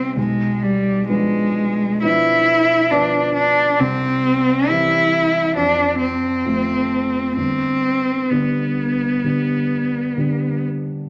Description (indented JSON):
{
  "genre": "classical, romantic duo for cello and grand piano",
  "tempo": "62-69 BPM",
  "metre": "4/4",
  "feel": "rubato",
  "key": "unclear",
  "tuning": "A4 = 440 Hz",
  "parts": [
    { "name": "rich cello", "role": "melody", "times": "0.0-10.7 s", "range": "G3 to E4", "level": "-19 LUFS", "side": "equal", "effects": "none" },
    { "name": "dark baby grand piano", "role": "accompaniment", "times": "0.0-11.1 s", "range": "G1 to G4", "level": "-26 LUFS", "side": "equal", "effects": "none" }
  ],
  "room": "wet stone room reverb, RT60 1.3 s",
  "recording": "none",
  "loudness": "-18 LUFS",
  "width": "mono",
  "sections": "0.0-11.1 A section",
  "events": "none",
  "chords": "0.2 Bdim7; 3.8 C; 5.6 F; 7.4 G",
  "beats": "| 0.16 1.08 2.03 2.92 | 3.80 4.69 5.57 6.46 | 7.38 8.31 9.25 10.19"
}